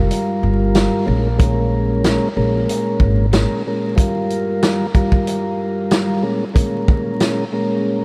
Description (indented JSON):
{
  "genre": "hip hop, boom-bap hip-hop",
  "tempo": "93 BPM",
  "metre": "4/4",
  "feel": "swing 55% on 16ths",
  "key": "unclear",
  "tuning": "A4 = 440 Hz",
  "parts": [
    { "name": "mellow tonewheel organ", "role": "accompaniment", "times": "0.0-8.0 s", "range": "G2 to Bb4", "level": "-21 LUFS", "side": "equal", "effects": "slow rotary speaker, cassette tape, high-pass filter, low-pass filter" },
    { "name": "upright bass", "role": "bass", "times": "0.0-3.4 s", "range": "G1 to Bb1", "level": "-21 LUFS", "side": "equal", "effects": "none" },
    { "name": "vintage drum kit", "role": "drums", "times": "0.1-7.4 s", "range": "hi-hat, kick drum, snare drum", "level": "-21 LUFS", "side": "equal", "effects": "none" }
  ],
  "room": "moderate huge ambient reverb, RT60 8.2 s",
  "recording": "dreamy mix soaked in reverb, vinyl crackle",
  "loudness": "-18 LUFS",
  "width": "mono",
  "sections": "0.0-8.0 A section",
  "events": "none",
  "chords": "0.0 Gm7; 1.1 Bbm7; 4.0 Gm7; 6.2 Bbm7"
}